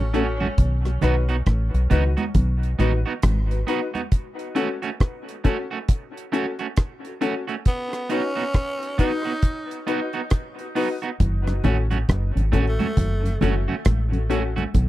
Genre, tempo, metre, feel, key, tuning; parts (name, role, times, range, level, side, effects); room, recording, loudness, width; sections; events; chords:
dub reggae; 68 BPM; 4/4; swing 61% on 16ths; F# dorian; A4 = 443 Hz
raspy tenor saxophone; melody; 0.0-0.1, 7.7-13.4 s; A3 to D#4; -32 LUFS; equal; dub echo
mellow tonewheel organ; accompaniment; 0.0-0.9, 11.5-14.6 s; F#2 to F#4; -29 LUFS; equal; chorus vibrato, slow rotary speaker
bright upright piano; stabs; 0.0-14.5 s; C#4 to B4; -29 LUFS; left 5 dB; dub echo
deep dub fingered electric bass; bass; 0.0-3.6, 11.2-14.9 s; F#1 to C#2; -21 LUFS; equal
electric guitar at the edge of break-up; accompaniment; 0.1-14.6 s; A3 to F#4; -29 LUFS; right 6 dB; dub echo
deep reggae drum kit; drums; 0.1-14.9 s; hi-hat, kick drum, rim click; -20 LUFS; equal
congas; percussion; 0.4-4.1, 11.2-14.9 s; -30 LUFS; right 3 dB
little or no reverb; dry, close 1970s-style studio recording; -20 LUFS; side -15 dB against mid
0.0-14.9 A section
break 4.1-11.2
0.0 F#m; 0.6 B; 4.1 F#m; 7.7 B; 11.2 F#m